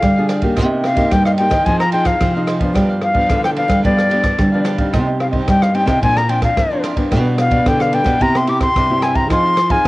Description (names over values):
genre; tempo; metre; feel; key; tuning
samba and choro; 110 BPM; 4/4; straight; C minor; A4 = 440 Hz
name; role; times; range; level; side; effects
concert flute; melody; 0.0-9.9 s; D5 to D6; -17 LUFS; left 2 dB; cassette tape, analog delay
nylon-string guitar; accompaniment; 0.0-9.9 s; G2 to Ab4; -21 LUFS; left 1 dB; cassette tape
nylon-string guitar; bass; 0.0-9.9 s; Bb2 to Bb3; -18 LUFS; right 1 dB; none
open jazz drum kit; drums; 0.0-9.9 s; kick drum, ride cymbal, rim click; -20 LUFS; right 1 dB; cassette tape
cavaquinho; accompaniment; 0.2-9.9 s; D4 to F5; -26 LUFS; right 4 dB; cassette tape
room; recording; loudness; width
light reverb; home recording on cassette; -13 LUFS; side -19 dB against mid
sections
0.0-9.9 A section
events
none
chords
0.0 Ddim; 0.6 Cm7; 1.7 Fm7; 2.8 G7; 4.9 Cm; 6.0 Bbadd9; 7.1 G/B; 8.2 C; 9.3 Fm7